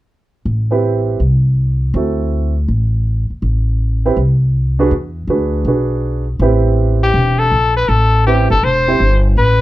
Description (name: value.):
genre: jazz, small-group swing and bop.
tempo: 162 BPM.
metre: 4/4.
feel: swing 66% on 8ths.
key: A dorian, A minor from 6.4 s.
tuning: A4 = 440 Hz.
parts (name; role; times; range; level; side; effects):
upright bass; bass; 0.5-9.6 s; E1 to E2; -14 LUFS; equal; none.
warm grand piano; accompaniment; 0.7-9.0 s; C4 to C5; -17 LUFS; right 4 dB; none.
clear trumpet; melody; 7.0-9.6 s; G4 to C5; -14 LUFS; left 3 dB; plate reverb.
room: light reverb.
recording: dark, warm production.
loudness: -12 LUFS.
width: side -16 dB against mid.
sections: 0.5-6.4 A section; 6.4-9.6 B section.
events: none.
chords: 0.5 Am9; 1.9 D9; 3.4 Amadd9; 4.9 E7; 6.4 Am7.